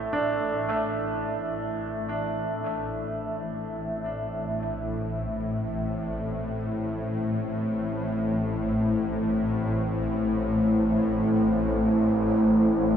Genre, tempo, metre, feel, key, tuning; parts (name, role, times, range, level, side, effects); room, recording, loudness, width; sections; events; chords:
dark ambient drone; free time; A4 = 440 Hz
dark analog pad; sustained chords; 0.0-13.0 s; A3 to E5; -26 LUFS; equal; chorus
bright concert grand piano; arpeggios; 0.0-13.0 s; A2 to D4; -32 LUFS; right 2 dB; tape echo
swarming drone; drone; 0.0-13.0 s; A1 to A2; -31 LUFS; equal; built-in reverb
wet huge ambient reverb, RT60 8.1 s; dreamy mix soaked in reverb; -24 LUFS; side -9 dB against mid
0.0-13.0 A section
fade-in on synth drone 0.0-13.0; fade-in on analog synth pad 0.0-13.0
0.0 Am